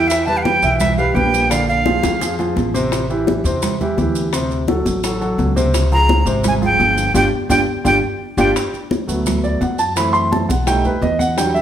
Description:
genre	Afro-Cuban jazz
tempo	170 BPM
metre	4/4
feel	straight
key	unclear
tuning	A4 = 441 Hz
part	breathy bright jazz flute	melody	0.0-2.4, 5.9-8.5 s	E5 to Bb5	-17 LUFS	right 2 dB	none
part	warm grand piano	accompaniment	0.0-11.6 s	C3 to C6	-19 LUFS	right 1 dB	none
part	upright bass	bass	0.0-11.6 s	G1 to F#2	-21 LUFS	equal	none
part	bongos	percussion	0.1-11.6 s	none	-26 LUFS	left 6 dB	none
part	congas	percussion	0.1-11.6 s	none	-23 LUFS	right 1 dB	none
part	maracas	percussion	0.1-11.6 s	none	-30 LUFS	right 5 dB	none
room	wet large studio reverb, RT60 1.2 s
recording	heard from further back in the room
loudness	-14 LUFS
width	side -10 dB against mid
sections	0.0-8.6 A section; 8.6-11.6 B section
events	drum fill 2.0-2.9; band accent 7.2-8.6; grand piano solo 8.6-11.6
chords	0.1 Em; 1.5 Bb9; 2.9 Am7; 4.3 D7; 5.7 Dbmaj7; 7.2 G5; 8.6 D6; 10.0 F#m7b5; 10.7 B7b13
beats	| 0.11 0.46 0.81 1.16 | 1.51 1.87 2.22 2.57 | 2.92 3.28 3.63 3.98 | 4.33 4.68 5.04 5.39 | 5.74 6.09 6.45 6.80 | 7.15 7.50 7.86 8.21 | 8.56 8.91 9.27 9.62 | 9.97 10.32 10.68 11.03 | 11.38

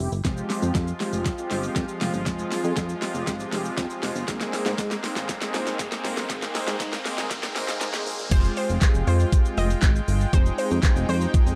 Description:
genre	dance-pop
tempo	119 BPM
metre	4/4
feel	straight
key	F minor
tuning	A4 = 441 Hz
part	mellow synth brass	accompaniment	0.0-11.6 s	G3 to Ab4	-34 LUFS	equal	chorus, sidechain pumping
part	chorused synth bass	bass	0.0-11.6 s	F1 to Ab2	-29 LUFS	equal	sidechain pumping
part	pop drum kit	drums	0.0-11.6 s	crash cymbal, handclaps, hi-hat, kick drum, shaker, snare drum	-27 LUFS	equal	none
part	soft supersaw	sustained chords	0.2-11.6 s	F3 to G5	-34 LUFS	equal	sidechain pumping
part	tube shaker	percussion	0.2-11.6 s	none	-48 LUFS	equal	none
part	riser	sound effects	3.4-8.3 s	none	-40 LUFS	equal	none
part	unison pluck	melody	8.3-11.2 s	C5 to Eb5	-34 LUFS	equal	sidechain pumping
room	light reverb, digital ambience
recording	dark, warm production, high-pass filter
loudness	-25 LUFS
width	mono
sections	0.0-8.3 A section; 8.3-11.6 B section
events	build-up 0.0-8.3; drum fill 0.0-8.3; filter sweep 0.0-8.3; drop 8.3-11.6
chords	0.2 Fmadd9; 4.3 Abadd9; 8.3 Fmadd9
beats	| 0.25 0.75 1.26 1.76 | 2.27 2.77 3.27 3.78 | 4.28 4.79 5.29 5.79 | 6.30 6.80 7.31 7.81 | 8.31 8.82 9.32 9.83 | 10.33 10.84 11.34

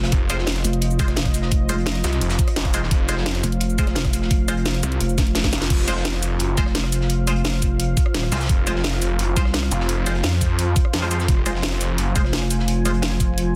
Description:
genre	dark technical drum and bass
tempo	172 BPM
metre	4/4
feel	straight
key	F minor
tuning	A4 = 441 Hz
part	dark analog pad	sustained chords	0.0-13.6 s	F4 to Ab5	-32 LUFS	equal	chorus, sidechain pumping
part	pulsing pluck wobble bass	bass	0.0-9.7, 12.2-13.5 s	Eb1 to C2	-24 LUFS	equal	distortion, chorus
part	crunchy breakbeat drum kit	drums	0.0-13.5 s	hi-hat, snare drum	-37 LUFS	equal	none
part	snarling distorted saw bass	bass	0.1-12.1 s	F1 to F2	-25 LUFS	equal	tube saturation
part	drum and bass drum kit	drums	0.1-13.4 s	crash cymbal, hi-hat, rim click, shaker, snare drum	-28 LUFS	equal	overdrive
part	electronic kick drum	drums	0.1-13.3 s	none	-22 LUFS	equal	overdrive
part	band-passed chord stab	stabs	0.3-12.9 s	Ab3 to C5	-32 LUFS	equal	phaser, cassette tape, tape echo
room	little or no reverb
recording	dense, heavily limited modern master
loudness	-21 LUFS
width	mono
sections	0.0-5.7 A section; 5.7-13.6 A section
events	drop 0.0-5.7, 5.7-13.6; drum fill 5.2-5.7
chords	0.0 F5; 5.7 Fm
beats	| 0.12 0.47 0.82 1.17 | 1.52 1.87 2.21 2.56 | 2.91 3.26 3.61 3.96 | 4.31 4.66 5.00 5.35 | 5.70 6.05 6.40 6.75 | 7.10 7.45 7.80 8.14 | 8.49 8.84 9.19 9.54 | 9.89 10.24 10.59 10.94 | 11.29 11.63 11.98 12.33 | 12.68 13.03 13.38

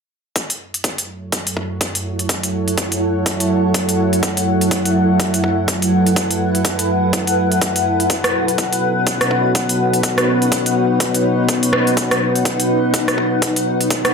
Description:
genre	bass house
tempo	124 BPM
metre	4/4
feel	swing 59% on 16ths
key	F# dorian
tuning	A4 = 442 Hz
part	dark analog pad	sustained chords	1.2-14.1 s	F#3 to E5	-19 LUFS	right 1 dB	chorus, sidechain pumping
part	big-room dance drum kit	drums	0.4-14.1 s	hi-hat, rim click	-20 LUFS	equal	none
part	electronic kick drum	drums	0.4-14.0 s	none	-24 LUFS	equal	high-pass filter on kick, high-pass filter on room
part	granular cloud pad	texture	1.6-14.1 s	D#4 to F#5	-19 LUFS	left 1 dB	built-in reverb, sidechain pumping
room	moderate digital room reverb, RT60 1.1 s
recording	none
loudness	-15 LUFS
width	side -5 dB against mid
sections	0.4-14.1 A section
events	filter sweep on analog synth pad 0.4-14.1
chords	0.4 F#m7; 8.1 Badd9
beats	| 0.36 0.84 1.32 1.81 | 2.29 2.78 3.26 3.74 | 4.23 4.71 5.20 5.68 | 6.16 6.65 7.13 7.62 | 8.10 8.58 9.07 9.55 | 10.03 10.52 11.00 11.49 | 11.97 12.45 12.94 13.42 | 13.90

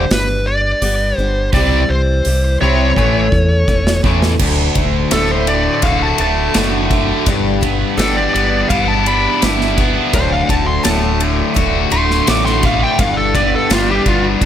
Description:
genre	classic rock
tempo	84 BPM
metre	4/4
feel	straight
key	D mixolydian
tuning	A4 = 441 Hz
part	smooth overdriven lead guitar	melody	0.0-14.2 s	F4 to D6	-18 LUFS	equal	digital delay
part	picked steel-string acoustic guitar	accompaniment	0.0-14.5 s	G2 to A4	-24 LUFS	left 3 dB	none
part	cranked stack guitar	riff	0.0-14.5 s	D2 to F#4	-20 LUFS	right 12 dB	overdrive, phaser
part	distorted electric guitar	riff	0.0-14.5 s	D2 to F#4	-19 LUFS	left 12 dB	overdrive
part	deep dub fingered electric bass	bass	0.0-14.5 s	D1 to E2	-18 LUFS	equal	none
part	big rock drum kit	drums	0.1-14.5 s	crash cymbal, hi-hat, kick drum, ride cymbal, snare drum	-19 LUFS	equal	none
room	small room ambience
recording	none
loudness	-12 LUFS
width	side -10 dB against mid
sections	0.0-4.4 A section; 4.4-14.5 B section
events	half time 0.0-4.4; drum fill 3.0-4.4; lead electric guitar solo 4.4-14.5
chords	0.0 G; 1.5 C; 3.0 A; 4.4 D; 7.3 G6; 10.1 D; 13.0 G6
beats	0.10 0.81 | 1.53 2.25 2.96 3.68 | 4.40 5.12 5.83 6.55 | 7.27 7.98 8.70 9.42 | 10.13 10.85 11.56 12.28 | 12.99 13.71 14.42

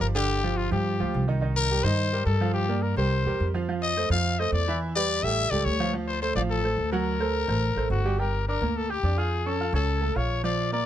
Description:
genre	latin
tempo	213 BPM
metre	4/4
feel	straight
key	G minor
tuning	A4 = 441 Hz
part	growling trumpet	melody	0.0-10.9 s	F4 to F5	-28 LUFS	left 5 dB	none
part	clear grand piano	accompaniment	0.0-10.8 s	D3 to G6	-29 LUFS	right 5 dB	none
part	upright bass	bass	0.0-10.8 s	G1 to G2	-27 LUFS	equal	none
room	little or no reverb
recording	close, detailed microphones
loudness	-23 LUFS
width	side -11 dB against mid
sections	0.0-8.2 A section; 8.2-10.9 B section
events	none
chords	0.3 G5; 1.4 Cm7; 2.6 Gm7; 3.1 C7; 3.7 F6; 4.8 Em7; 5.4 A7b13; 5.9 Dm7; 7.1 D7b13; 8.2 Gm7; 9.3 Faug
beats	0.01 | 0.30 0.58 0.86 1.14 | 1.43 1.71 1.99 2.27 | 2.56 2.84 3.12 3.40 | 3.68 3.97 4.25 4.53 | 4.81 5.09 5.38 5.66 | 5.94 6.22 6.50 6.78 | 7.07 7.35 7.63 7.91 | 8.19 8.47 8.75 9.04 | 9.32 9.60 9.88 10.16 | 10.45 10.73

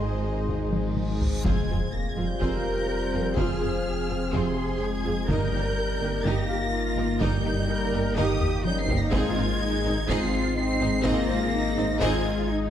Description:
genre	cinematic, hybrid orchestral and electronic film score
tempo	125 BPM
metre	4/4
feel	straight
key	F minor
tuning	A4 = 440 Hz
part	warm symphonic violin section	melody	0.0-12.5 s	Eb5 to C7	-34 LUFS	equal	none
part	warm symphonic violin section	second line	0.0-12.2 s	Eb4 to Eb5	-36 LUFS	left 2 dB	none
part	warm symphonic viola section	accompaniment	0.0-12.2 s	Ab3 to F4	-34 LUFS	right 2 dB	none
part	analog drone	sustained chords	0.0-12.7 s	Ab3 to Eb5	-33 LUFS	left 2 dB	chorus
part	mellow French horn section	sustained chords	0.0-12.5 s	C3 to C4	-32 LUFS	left 4 dB	none
part	clear symphonic double bass section	bass	0.0-12.1 s	G1 to F2	-32 LUFS	right 3 dB	none
part	warm sub bass	bass	0.0-12.7 s	F1 to Ab1	-32 LUFS	equal	none
part	warm symphonic cello section	bass	0.0-12.7 s	Ab2 to Bb4	-32 LUFS	right 2 dB	none
part	reverse cymbal and impact	sound effects	1.2-3.4 s	none	-33 LUFS	equal	none
part	felt-muted upright piano	texture	0.0-12.7 s	C4 to Ab5	-41 LUFS	left 2 dB	none
part	taiko ensemble	drums	0.5-12.5 s	none	-31 LUFS	equal	none
room	moderate scoring stage reverb, RT60 2.0 s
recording	dark, warm production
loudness	-23 LUFS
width	side -10 dB against mid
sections	0.0-1.4 A section; 1.4-12.7 B section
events	drum fill 0.7-1.4, 8.4-9.1; reverse cymbal 1.2; impact 1.4-3.4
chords	0.0 Ab; 1.4 Fm; 5.3 Eb/G; 9.1 Ab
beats	0.01 0.49 0.97 | 1.45 1.93 2.41 2.89 | 3.37 3.85 4.33 4.81 | 5.29 5.77 6.25 6.73 | 7.21 7.69 8.17 8.65 | 9.13 9.61 10.09 10.57 | 11.05 11.53 12.01 12.49

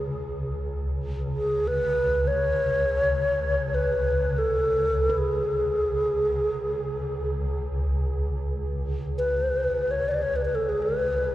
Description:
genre	world meditative, free-time meditation music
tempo	free time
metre	none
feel	none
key	unclear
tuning	A4 = 440 Hz
part	swarming drone	drone	0.0-11.3 s	C#2	-28 LUFS	equal	built-in reverb
part	breathy mellow bass flute	melody	1.3-11.3 s	G#4 to D5	-24 LUFS	equal	diffuse ambient delay
part	handpan	texture	5.1-11.3 s	B4	-38 LUFS	right 6 dB	none
room	moderate huge ambient reverb, RT60 5.6 s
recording	worn, warbling old tape, cassette tape, warbly pitch drift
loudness	-23 LUFS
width	side -14 dB against mid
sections	0.0-11.3 A section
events	none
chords	none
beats	free time

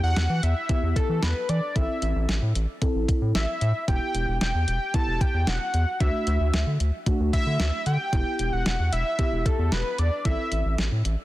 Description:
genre	synth-pop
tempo	113 BPM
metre	4/4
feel	straight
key	E minor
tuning	A4 = 440 Hz
part	fat analog lead	melody	0.0-10.7 s	A4 to A5	-29 LUFS	left 1 dB	chorus
part	muted felt-like synth keys	accompaniment	0.0-10.9 s	A3 to A4	-32 LUFS	right 1 dB	chorus
part	round analog bass	bass	0.0-11.2 s	E1 to E3	-24 LUFS	equal	none
part	clean 12-bit digital drum machine	drums	0.2-11.2 s	hi-hat, kick drum, snare drum	-27 LUFS	equal	none
room	light reverb, digital ambience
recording	dense, heavily limited modern master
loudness	-22 LUFS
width	side -16 dB against mid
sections	0.0-11.2 A section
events	none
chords	0.0 Em; 1.8 Am; 3.9 Emadd9; 6.0 Dadd9; 8.1 Em; 10.3 Am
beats	0.16 0.69 1.23 | 1.76 2.29 2.82 3.35 | 3.88 4.41 4.94 5.47 | 6.00 6.54 7.07 7.60 | 8.13 8.66 9.19 9.72 | 10.25 10.78

